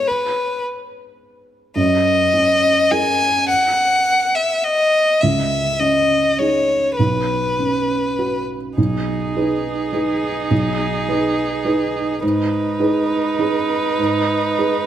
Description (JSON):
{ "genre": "neoclassical piano and strings", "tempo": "104 BPM", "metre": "3/4", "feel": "rubato", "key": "B major", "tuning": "A4 = 440 Hz", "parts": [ { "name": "rich violin", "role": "melody", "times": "0.0-14.9 s", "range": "G#4 to G#5", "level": "-18 LUFS", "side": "left 2 dB", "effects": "none" }, { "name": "felt-muted upright piano", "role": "accompaniment", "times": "0.0-14.9 s", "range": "B1 to B4", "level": "-20 LUFS", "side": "right 2 dB", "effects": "none" }, { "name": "rich viola", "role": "accompaniment", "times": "8.8-14.9 s", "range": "D#4", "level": "-23 LUFS", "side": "right 6 dB", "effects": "none" } ], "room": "moderate concert hall reverb, RT60 1.8 s", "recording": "none", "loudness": "-16 LUFS", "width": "side -11 dB against mid", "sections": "0.0-8.8 A section; 8.8-14.9 B section", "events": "none", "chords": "0.0 G#m; 1.8 F#add9; 5.2 C#madd9; 7.0 Bsus2; 8.8 B6; 12.2 G#m", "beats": "| 0.07 0.64 1.21 | 1.77 2.34 2.91 | 3.49 4.06 4.63 | 5.21 5.79 6.38 | 6.98 7.58 8.18 | 8.77 9.35 9.93 | 10.51 11.08 11.65 | 12.22 12.80 13.39 | 13.98 14.58" }